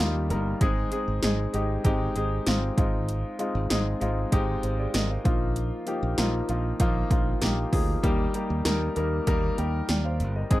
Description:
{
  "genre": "1980s-style pop",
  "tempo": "97 BPM",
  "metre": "4/4",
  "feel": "straight",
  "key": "Eb major",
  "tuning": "A4 = 439 Hz",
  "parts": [
    { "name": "warm grand piano", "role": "accompaniment", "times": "0.0-10.6 s", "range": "F3 to G5", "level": "-28 LUFS", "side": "left 1 dB", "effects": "none" },
    { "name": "modern bright fingered electric bass", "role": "bass", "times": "0.0-10.6 s", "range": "G1 to Eb2", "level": "-28 LUFS", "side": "equal", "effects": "none" },
    { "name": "80s electronic pad drums", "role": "drums", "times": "0.3-10.6 s", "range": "hi-hat, kick drum, snare drum", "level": "-26 LUFS", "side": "equal", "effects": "overdrive" }
  ],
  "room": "little or no reverb",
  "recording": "dry, close 1970s-style studio recording",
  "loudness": "-24 LUFS",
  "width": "side -16 dB against mid",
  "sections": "0.0-10.6 A section",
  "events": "none",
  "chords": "0.0 Eb; 0.6 Fm7/Ab; 5.3 Bbsus4; 8.0 Eb"
}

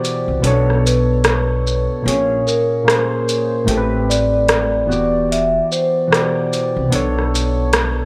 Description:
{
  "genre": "lo-fi hip hop",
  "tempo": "74 BPM",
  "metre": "4/4",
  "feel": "swing 62% on 16ths",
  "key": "unclear",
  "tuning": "A4 = 440 Hz",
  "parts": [
    { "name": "vibraphone with soft mallets", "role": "melody", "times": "0.0-6.9 s", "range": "Bb4 to E5", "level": "-22 LUFS", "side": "equal", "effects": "low-pass filter, slapback echo" },
    { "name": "soft electric-piano-like synth keys", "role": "accompaniment", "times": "0.0-8.1 s", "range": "A2 to D5", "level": "-22 LUFS", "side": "equal", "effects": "chorus, cassette tape, low-pass filter" },
    { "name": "booming analog drum machine", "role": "drums", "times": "0.0-8.0 s", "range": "hi-hat, rim click, shaker", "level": "-21 LUFS", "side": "equal", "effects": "none" },
    { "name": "upright bass", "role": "bass", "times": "0.3-8.1 s", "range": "E1 to C2", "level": "-22 LUFS", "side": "equal", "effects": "none" }
  ],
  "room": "moderate echo chamber reverb, RT60 2.1 s",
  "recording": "none",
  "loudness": "-17 LUFS",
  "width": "mono",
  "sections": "0.0-8.1 A section",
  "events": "break 0.0-8.1",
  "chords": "0.4 Bm9; 2.1 Bbm9; 3.7 Am9; 4.9 Em9; 6.9 Bm9"
}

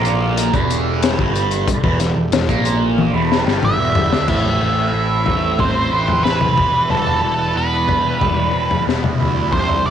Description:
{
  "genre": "psychedelic rock",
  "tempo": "92 BPM",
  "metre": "4/4",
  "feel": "straight",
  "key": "E minor",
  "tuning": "A4 = 439 Hz",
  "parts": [
    { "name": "hand-pumped harmonium", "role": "sustained chords", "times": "0.0-9.9 s", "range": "E3 to B5", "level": "-29 LUFS", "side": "right 10 dB", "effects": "none" },
    { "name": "fuzz guitar", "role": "riff", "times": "0.0-9.9 s", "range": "E2 to B4", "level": "-20 LUFS", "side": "right 2 dB", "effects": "distortion, phaser" },
    { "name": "fuzz picked electric bass", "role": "bass", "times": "0.0-9.9 s", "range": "E1 to D2", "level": "-22 LUFS", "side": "right 1 dB", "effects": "overdrive" },
    { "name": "crunchy breakbeat drum kit", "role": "drums", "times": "0.0-9.8 s", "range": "crash cymbal, hi-hat, kick drum, snare drum, toms", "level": "-20 LUFS", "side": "left 4 dB", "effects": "none" },
    { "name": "octave-fuzz lead guitar", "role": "melody", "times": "3.6-9.9 s", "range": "A4 to E5", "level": "-19 LUFS", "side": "right 2 dB", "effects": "wah, distortion, tape echo" }
  ],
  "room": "moderate spring reverb, RT60 1.9 s, small room ambience",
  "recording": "1960s-style stereo",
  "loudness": "-14 LUFS",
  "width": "side -9 dB against mid",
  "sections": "0.0-4.3 A section; 4.3-9.9 B section",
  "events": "drum fill 3.0-4.3",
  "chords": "0.0 Em; 4.3 Amadd9; 6.6 Em"
}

